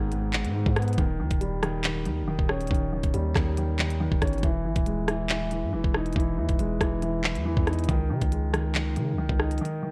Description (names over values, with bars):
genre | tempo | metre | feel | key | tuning
hip hop, drill | 139 BPM | 4/4 | half-time | unclear | A4 = 441 Hz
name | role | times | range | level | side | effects
dark concert grand piano | accompaniment | 0.0-9.9 s | G#2 to D#4 | -31 LUFS | equal | none
long sustained 808-style bass | bass | 0.0-9.6 s | D#1 to C#3 | -31 LUFS | equal | none
drill drum kit | drums | 0.1-9.7 s | handclaps, hi-hat, kick drum, rim click | -30 LUFS | equal | none
room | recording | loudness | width
little or no reverb | worn, warbling old tape, cassette tape, warbly pitch drift | -26 LUFS | mono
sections
0.0-9.9 A section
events
break 9.6-9.9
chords
0.0 G#m; 1.0 D#7; 4.4 Emaj7; 7.9 C#sus2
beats
0.12 0.55 | 0.98 1.41 1.84 2.27 | 2.71 3.14 3.57 4.00 | 4.43 4.87 5.30 5.73 | 6.16 6.59 7.02 7.46 | 7.89 8.32 8.75 9.18 | 9.61